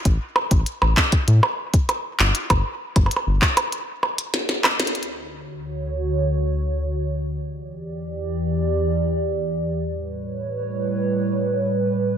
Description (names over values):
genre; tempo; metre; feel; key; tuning
IDM; 98 BPM; 4/4; straight; D major; A4 = 440 Hz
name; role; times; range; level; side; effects
round analog bass; bass; 0.1-3.4 s; G1 to A2; -18 LUFS; equal; none
electronic kick drum; drums; 0.1-3.5 s; none; -19 LUFS; equal; none
glitchy drum kit; drums; 0.1-5.1 s; handclaps, hi-hat, percussion blips, snare drum; -21 LUFS; right 1 dB; none
hollow soft pad; sustained chords; 5.0-12.2 s; D2 to D5; -22 LUFS; right 1 dB; chorus, sidechain pumping
room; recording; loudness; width
light reverb; none; -20 LUFS; side -9 dB against mid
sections
0.0-5.0 A section; 5.0-12.2 B section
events
break 3.7-5.0; drum fill 4.3-5.0; band accent 4.8-5.1; filter sweep on analog synth pad 5.0-12.2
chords
0.1 N.C.; 5.0 Dmaj7; 7.4 Em7; 9.8 A9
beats
| 0.05 0.67 1.28 1.89 | 2.50 3.11 3.73 4.34 | 4.95 5.56 6.18 6.79 | 7.40 8.01 8.62 9.24 | 9.85 10.46 11.07 11.69